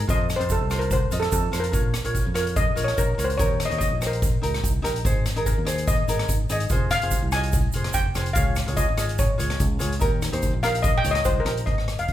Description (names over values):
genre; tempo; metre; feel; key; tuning
calypso; 145 BPM; 4/4; straight; unclear; A4 = 440 Hz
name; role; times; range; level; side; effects
fingered electric bass; bass; 0.0-12.1 s; F1 to F2; -27 LUFS; equal; none
steel pan; melody; 0.1-12.1 s; A4 to Ab5; -26 LUFS; left 2 dB; none
ukulele; accompaniment; 0.1-11.6 s; Eb4 to Eb5; -30 LUFS; right 1 dB; none
street-band drum kit; drums; 0.1-12.1 s; hi-hat, kick drum, rim click; -25 LUFS; equal; none
egg shaker; percussion; 0.1-11.4 s; none; -36 LUFS; right 5 dB; none
room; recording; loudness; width
moderate large studio reverb, RT60 1.2 s; band playing live in one room; -21 LUFS; side -12 dB against mid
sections
0.0-11.7 A section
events
steel pan solo 0.0-11.7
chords
0.1 F7; 1.7 Bbm; 3.4 Eb; 5.1 Abadd9; 6.7 Fm; 8.4 Db; 10.0 Eb